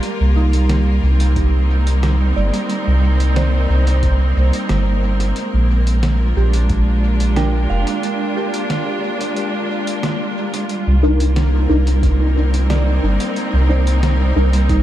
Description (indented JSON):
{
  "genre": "ambient dub",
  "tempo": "90 BPM",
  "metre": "4/4",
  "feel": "straight",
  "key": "C minor",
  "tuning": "A4 = 442 Hz",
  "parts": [
    { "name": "bright studio string section", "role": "sustained chords", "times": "0.0-14.8 s", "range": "G3 to Bb4", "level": "-22 LUFS", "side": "right 1 dB", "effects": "none" },
    { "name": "soft synth bell", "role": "arpeggios", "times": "0.0-14.8 s", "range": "D4 to G5", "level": "-27 LUFS", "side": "right 3 dB", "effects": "chorus, diffuse ambient delay" },
    { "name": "lo-fi sampler-style drum kit", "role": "drums", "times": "0.0-14.8 s", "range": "hi-hat, snare drum", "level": "-28 LUFS", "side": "right 1 dB", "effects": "overdrive, dub echo" },
    { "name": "soft dub sub bass", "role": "bass", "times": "0.2-14.8 s", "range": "F1 to C2", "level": "-14 LUFS", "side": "equal", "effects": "none" },
    { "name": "electronic kick drum", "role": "drums", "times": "1.4-6.8, 12.0-14.8 s", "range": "none", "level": "-20 LUFS", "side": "equal", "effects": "overdrive" },
    { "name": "filtered dub chord stab", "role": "stabs", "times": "11.0-14.5 s", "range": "D4 to Bb4", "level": "-22 LUFS", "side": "left 1 dB", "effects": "phaser, ensemble chorus, dub echo" }
  ],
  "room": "light reverb",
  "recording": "none",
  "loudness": "-14 LUFS",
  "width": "side -13 dB against mid",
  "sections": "0.0-14.8 A section",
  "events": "break 8.0-10.7",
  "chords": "0.0 Cm7; 5.4 Bb7; 10.7 Cm7"
}